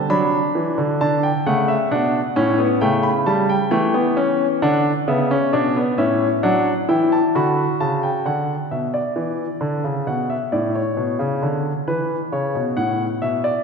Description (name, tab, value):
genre	classical, baroque-style 3-part fugue for grand piano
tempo	66 BPM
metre	4/4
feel	straight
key	unclear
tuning	A4 = 440 Hz
part	warm grand piano	solo	0.0-13.6 s	A2 to B5	-17 LUFS	equal	none
room	wet concert hall reverb, RT60 2.3 s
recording	minimal, uncompressed stereo recording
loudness	-17 LUFS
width	side -5 dB against mid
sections	0.0-8.3 A section; 8.3-13.6 B section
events	none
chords	0.0 G (rootless); 1.0 D; 2.8 A7/C#; 4.6 D; 10.1 Bm